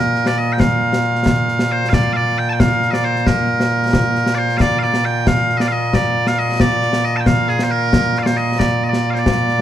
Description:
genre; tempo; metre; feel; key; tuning
scottish traditional, Scottish pipe music; 90 BPM (dotted quarters); 6/8; straight; Bb major; A4 = 445 Hz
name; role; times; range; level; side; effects
loud bright bagpipes; melody; 0.0-9.6 s; Bb2 to A5; -16 LUFS; right 1 dB; none
concert snare drum and concert bass drum; drums; 0.1-9.5 s; none; -18 LUFS; left 1 dB; none
room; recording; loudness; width
moderate scoring stage reverb, RT60 1.8 s; dark, warm production; -14 LUFS; side -11 dB against mid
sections
0.0-4.6 A section; 4.6-9.6 A section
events
none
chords
none

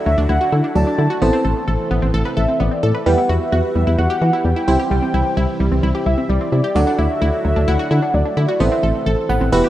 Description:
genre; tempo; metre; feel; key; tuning
synth-pop; 130 BPM; 4/4; straight; unclear; A4 = 440 Hz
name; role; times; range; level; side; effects
warm velvety synth lead; melody; 0.0-9.1 s; D5 to A5; -22 LUFS; equal; chorus, tape echo
FM electric piano; accompaniment; 0.0-9.7 s; B3 to F#5; -22 LUFS; right 2 dB; chorus
phased analog pad; sustained chords; 0.0-9.7 s; C3 to F#5; -28 LUFS; equal; phaser, chorus
wide unison pluck; arpeggios; 0.1-9.7 s; F#3 to B4; -23 LUFS; equal; tape echo
solid FM bass; bass; 0.1-9.6 s; E1 to E3; -17 LUFS; equal; none
room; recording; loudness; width
moderate lush hall reverb, RT60 2.6 s; rough home demo mix; -15 LUFS; side -13 dB against mid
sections
0.0-9.7 A section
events
FM electric piano fill 9.1-9.7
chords
0.0 Dadd9; 1.2 Amadd9; 3.1 Emadd9; 4.7 C; 6.8 Dadd9; 8.6 Amadd9

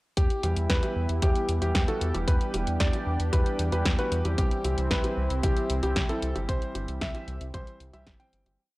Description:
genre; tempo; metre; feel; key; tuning
italo disco; 114 BPM; 4/4; straight; E minor; A4 = 440 Hz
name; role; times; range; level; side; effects
warm electric grand piano; melody; 0.2-8.5 s; G4 to G5; -33 LUFS; left 1 dB; tape echo
lush unison pad; sustained chords; 0.2-8.6 s; B3 to G4; -35 LUFS; equal; chorus
round analog bass; bass; 0.2-8.6 s; E1 to E2; -29 LUFS; equal; none
electronic kick drum; drums; 0.2-8.2 s; none; -27 LUFS; equal; none
house drum kit; drums; 0.2-8.6 s; hi-hat, snare drum; -32 LUFS; equal; none
dark grand piano; stabs; 0.4-8.6 s; E3 to C5; -34 LUFS; right 1 dB; low-pass filter
room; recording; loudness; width
digital ambience; dry, gritty hardware recording, cassette tape; -24 LUFS; side -20 dB against mid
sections
0.2-8.6 verse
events
fade-out 5.8-8.6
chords
0.2 Em; 4.4 C

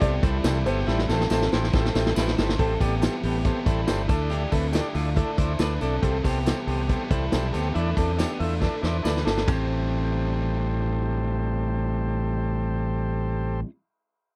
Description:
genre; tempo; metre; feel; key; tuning
jangly indie pop; 139 BPM; 4/4; straight; A minor; A4 = 444 Hz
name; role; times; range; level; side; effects
warm upright piano; melody; 0.0-2.1 s; C5 to D5; -35 LUFS; equal; none
biting overdriven guitar; accompaniment; 0.0-13.7 s; A2 to C5; -34 LUFS; equal; none
overdriven combo organ; accompaniment; 0.0-13.6 s; E4 to E5; -34 LUFS; equal; none
electric guitar through a small old amp; arpeggios; 0.0-10.7 s; G3 to C5; -32 LUFS; equal; none
fingered electric bass; bass; 0.0-13.6 s; G1 to E2; -29 LUFS; equal; none
vintage drum kit; drums; 0.0-9.6 s; hi-hat, kick drum, ride cymbal, snare drum, toms; -28 LUFS; equal; none
tambourine; percussion; 0.0-9.7 s; none; -48 LUFS; equal; none
room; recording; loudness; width
little or no reverb; dry, close 1970s-style studio recording; -25 LUFS; mono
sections
0.0-2.6 A section; 2.6-9.5 B section; 9.5-12.9 C section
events
drum fill 0.9-2.6, 8.6-9.5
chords
0.0 Am7/C; 2.6 Am7; 4.1 Dsus2; 6.0 Am7/C; 7.8 E7sus4; 9.5 Am7

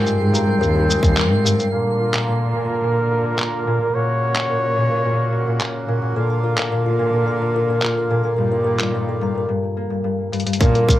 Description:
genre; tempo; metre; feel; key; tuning
folktronica; 108 BPM; 4/4; straight; Bb major; A4 = 440 Hz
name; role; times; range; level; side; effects
kalimba; second line; 0.0-1.7, 6.2-11.0 s; F4 to Bb5; -23 LUFS; left 2 dB; ping-pong delay
hand-pumped harmonium; sustained chords; 0.0-11.0 s; C3 to G5; -27 LUFS; right 2 dB; low-pass filter
concert harp; arpeggios; 0.0-11.0 s; G2 to Gb4; -23 LUFS; equal; low-pass filter
dark cello; bass; 0.0-10.9 s; Eb2 to Bb2; -22 LUFS; right 1 dB; none
twinkling granular texture; texture; 0.0-1.7 s; C7; -36 LUFS; right 5 dB; built-in reverb
lo-fi sampler-style drum kit; drums; 0.1-11.0 s; handclaps, hi-hat, shaker; -23 LUFS; equal; none
electronic kick drum; drums; 1.0-1.1, 10.6-11.0 s; none; -16 LUFS; equal; overdrive
warm flugelhorn; melody; 1.7-5.9 s; Bb4 to Db5; -24 LUFS; left 1 dB; tape echo
room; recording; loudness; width
moderate small room reverb, RT60 0.5 s; none; -17 LUFS; side -14 dB against mid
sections
0.0-1.7 A section; 1.7-10.6 B section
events
kick drops out 1.2-1.7; band accent 1.2; filter sweep on harmonium 1.7-10.6; break 9.5-10.6; drum fill 10.3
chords
0.0 Abmaj7; 1.7 Bb; 3.9 Gb/Bb; 6.2 Bb; 8.4 Ebadd9

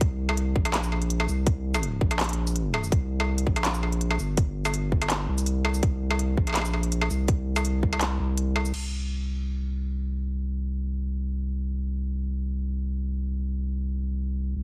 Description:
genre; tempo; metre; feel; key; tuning
half-time drum and bass; 165 BPM; 4/4; half-time; unclear; A4 = 440 Hz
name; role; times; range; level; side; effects
saturated sub bass; bass; 0.0-14.6 s; G1 to C2; -29 LUFS; equal; none
electronic kick drum; drums; 0.0-7.9 s; none; -26 LUFS; equal; none
industrial drum kit; drums; 0.0-8.8 s; crash cymbal, handclaps, hi-hat, shaker, struck metal; -31 LUFS; equal; none
room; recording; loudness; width
little or no reverb; heavily compressed radio sound, multiband compression; -27 LUFS; mono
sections
0.0-8.7 A section; 8.7-14.6 B section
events
drop 0.0-8.7; kick drops out 8.0-8.7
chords
none

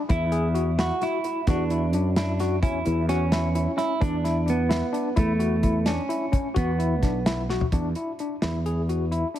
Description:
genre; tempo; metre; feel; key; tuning
progressive instrumental, band music in an uneven meter; 259 BPM (eighths); 11/8; straight; E mixolydian; A4 = 440 Hz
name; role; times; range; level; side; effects
semi-hollow electric guitar; second line; 0.0-7.5 s; A3 to G#4; -28 LUFS; right 3 dB; none
overdriven tine electric piano; arpeggios; 0.1-9.4 s; C#4 to G#4; -29 LUFS; left 4 dB; fast tremolo, tape echo
sustaining fretless electric bass; bass; 0.1-9.2 s; B1 to F#2; -25 LUFS; equal; wide subtle chorus
warm soul drum kit; drums; 0.1-9.4 s; hi-hat, kick drum, snare drum, toms; -27 LUFS; equal; none
room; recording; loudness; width
light reverb; heavily compressed radio sound; -22 LUFS; side -12 dB against mid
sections
0.0-7.7 A section; 7.7-9.4 B section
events
drum fill 7.5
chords
0.1 Esus2; 1.5 Dadd9/E; 2.6 C#m/E; 4.0 E5; 5.2 A/E; 6.6 E5; 7.7 E7(no3)

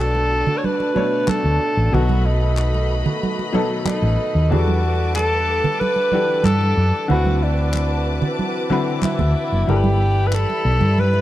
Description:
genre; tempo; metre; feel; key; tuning
lush 1970s-style soul; 93 BPM; 4/4; straight; unclear; A4 = 440 Hz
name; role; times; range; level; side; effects
warm tenor saxophone; melody; 0.0-11.2 s; D4 to C#5; -22 LUFS; equal; none
rich studio string section; second line; 0.0-11.2 s; E4 to D6; -30 LUFS; equal; none
bright grand piano; accompaniment; 0.0-11.2 s; B2 to C#5; -26 LUFS; left 4 dB; none
mellow French horn section; sustained chords; 0.0-11.2 s; D3 to A4; -29 LUFS; equal; none
hollow-body short-scale fingered electric bass; bass; 0.0-11.2 s; F#1 to G2; -18 LUFS; equal; none
congas; percussion; 0.1-11.2 s; none; -24 LUFS; right 4 dB; none
group handclap; percussion; 1.3-10.5 s; none; -33 LUFS; left 5 dB; none
room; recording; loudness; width
light reverb, small room ambience; dark, warm production; -16 LUFS; side -14 dB against mid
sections
0.0-11.2 A section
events
none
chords
0.0 Bm9; 1.9 B7; 4.5 Em11; 7.1 D13; 9.7 G69

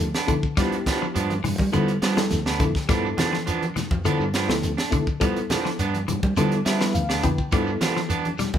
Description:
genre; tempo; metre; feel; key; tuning
afrobeat; 104 BPM; 4/4; straight; G mixolydian; A4 = 439 Hz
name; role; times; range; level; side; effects
reed electric piano; accompaniment; 0.0-8.1 s; B3 to G5; -28 LUFS; left 2 dB; fast tremolo
fingered electric bass; bass; 0.0-8.6 s; D2 to G3; -27 LUFS; right 1 dB; none
tight funk drum kit; drums; 0.0-8.6 s; hi-hat, kick drum, snare drum; -26 LUFS; equal; none
congas; percussion; 0.0-8.6 s; none; -31 LUFS; right 1 dB; none
shekere; percussion; 0.0-8.6 s; none; -32 LUFS; right 1 dB; none
electric guitar at the edge of break-up; stabs; 0.1-8.3 s; F3 to D4; -27 LUFS; right 5 dB; none
clean electric guitar; arpeggios; 0.3-8.6 s; D3 to G3; -28 LUFS; left 5 dB; none
room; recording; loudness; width
moderate large studio reverb, RT60 0.9 s; band playing live in one room; -20 LUFS; side -9 dB against mid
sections
0.0-8.6 A section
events
reed electric piano fill 6.4-7.5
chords
0.0 G7

